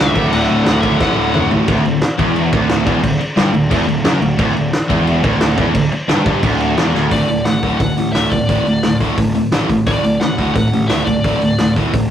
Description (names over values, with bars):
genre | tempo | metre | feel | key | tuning
punk rock | 176 BPM | 4/4 | straight | D major | A4 = 440 Hz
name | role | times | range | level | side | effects
high-gain lead guitar | melody | 0.0-1.5, 7.1-11.7 s | D5 to F#5 | -21 LUFS | left 1 dB | distortion
distorted electric guitar | riff | 0.0-12.1 s | D2 to G3 | -20 LUFS | left 5 dB | distortion
distorted electric guitar | riff | 0.0-12.1 s | D2 to G3 | -20 LUFS | right 6 dB | distortion
high-gain distorted guitar | riff | 0.0-7.1 s | D2 to G3 | -19 LUFS | equal | distortion
fuzz picked electric bass | bass | 0.0-12.1 s | D1 to C#2 | -22 LUFS | equal | overdrive
loose indie drum kit | drums | 0.2-12.0 s | crash cymbal, hi-hat, kick drum, snare drum, toms | -18 LUFS | equal | none
room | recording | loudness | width
moderate studio reverb, RT60 0.6 s | rough rehearsal-room recording, warm saturation | -13 LUFS | side -10 dB against mid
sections
0.0-1.7 A section; 1.7-7.1 B section; 7.1-12.1 C section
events
drum fill 1.0-1.7, 6.9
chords
0.2 D